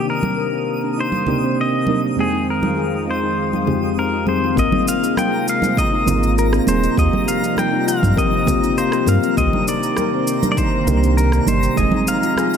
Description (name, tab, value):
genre	sunset chillout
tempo	100 BPM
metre	4/4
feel	straight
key	C minor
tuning	A4 = 440 Hz
part	pedal steel guitar	melody	0.0-12.6 s	Ab4 to G5	-22 LUFS	left 2 dB	ping-pong delay
part	soft electric-piano-like synth keys	accompaniment	0.0-12.6 s	F2 to Ab5	-21 LUFS	moving between left 7 dB and right 6 dB	chorus, auto-pan, ping-pong delay
part	lush unison pad	sustained chords	0.0-12.6 s	C3 to C5	-24 LUFS	equal	chorus
part	steel pan	arpeggios	0.0-12.5 s	C4 to Bb4	-27 LUFS	left 6 dB	ping-pong delay
part	twinkling granular texture	texture	0.0-12.6 s	Bb5 to Eb6	-32 LUFS	left 1 dB	built-in reverb
part	congas	percussion	0.2-12.5 s	none	-25 LUFS	right 3 dB	none
part	warm sub bass	bass	4.6-11.9 s	Eb1 to G2	-18 LUFS	right 1 dB	none
part	electronic cabasa and rim click	drums	4.6-12.6 s	none	-28 LUFS	right 2 dB	overdrive, studio reverb
part	electronic kick drum	drums	4.6-11.9 s	none	-22 LUFS	equal	overdrive, studio reverb
room	moderate recital hall reverb, RT60 1.8 s, digital ambience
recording	none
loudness	-15 LUFS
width	side -7 dB against mid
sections	0.0-4.6 A section; 4.6-12.6 B section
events	none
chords	0.0 Cm9; 2.2 Fm7; 4.6 Ab69; 7.0 Eb69; 9.4 Cm9; 11.8 Fm7